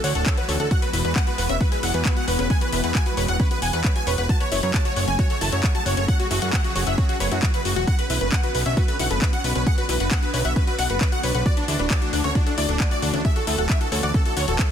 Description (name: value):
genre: uplifting trance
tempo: 134 BPM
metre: 4/4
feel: straight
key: F# minor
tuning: A4 = 440 Hz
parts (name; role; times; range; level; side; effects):
- supersaw chords; melody; 0.0-14.7 s; D4 to A5; -26 LUFS; right 1 dB; lush chorus, sidechain pumping, ping-pong delay
- lush unison pad; sustained chords; 0.0-14.7 s; C#3 to G#4; -31 LUFS; equal; chorus, phaser, sidechain pumping
- analog pluck; arpeggios; 0.0-14.7 s; F#3 to F#5; -31 LUFS; left 5 dB; chorus, sidechain pumping, ping-pong delay
- fat analog bass; bass; 0.0-14.6 s; D1 to F#2; -24 LUFS; equal; sidechain pumping
- house drum kit; drums; 0.0-14.7 s; handclaps, hi-hat; -29 LUFS; left 3 dB; overdrive
- electronic kick drum; drums; 0.3-14.7 s; none; -21 LUFS; equal; overdrive
room: little or no reverb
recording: dense, heavily limited modern master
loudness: -19 LUFS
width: side -9 dB against mid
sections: 0.0-14.7 A section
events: none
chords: 0.0 Dadd9; 0.7 Eadd9; 4.3 F#m; 7.9 Bmadd9; 11.5 Dadd9